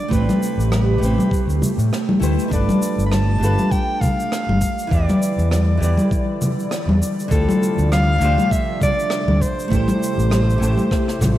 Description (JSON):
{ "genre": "sunset chillout", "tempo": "100 BPM", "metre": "4/4", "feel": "swing 56% on 16ths", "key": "unclear", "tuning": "A4 = 442 Hz", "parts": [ { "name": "warm soprano saxophone", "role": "melody", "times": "0.0-11.4 s", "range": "A4 to B5", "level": "-25 LUFS", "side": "equal", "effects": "tape echo" }, { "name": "flamenco guitar", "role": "accompaniment", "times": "0.0-11.4 s", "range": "D3 to D5", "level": "-25 LUFS", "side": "moving between left 2 dB and right 5 dB", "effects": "auto-pan, tape echo" }, { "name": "airy breathy pad", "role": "sustained chords", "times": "0.0-11.4 s", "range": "C3 to D5", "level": "-27 LUFS", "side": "right 2 dB", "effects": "chorus" }, { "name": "overdriven fingered electric bass", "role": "bass", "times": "0.1-11.4 s", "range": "G1 to A2", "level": "-18 LUFS", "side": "equal", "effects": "none" }, { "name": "electronic kick drum", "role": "drums", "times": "0.1-11.3 s", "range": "none", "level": "-22 LUFS", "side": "equal", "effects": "none" }, { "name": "shaker and rim click", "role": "drums", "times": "0.1-11.4 s", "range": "none", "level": "-31 LUFS", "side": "right 1 dB", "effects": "none" }, { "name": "congas", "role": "percussion", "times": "0.3-11.4 s", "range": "none", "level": "-22 LUFS", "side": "left 1 dB", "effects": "none" } ], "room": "moderate lush hall reverb, RT60 1.7 s, small room ambience", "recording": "rough home demo mix", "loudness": "-16 LUFS", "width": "side -13 dB against mid", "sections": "0.0-11.4 A section", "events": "drum fill 10.9-11.4", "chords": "0.1 Am9; 2.5 G9; 4.9 Em7; 7.3 Dm11; 9.7 Am7" }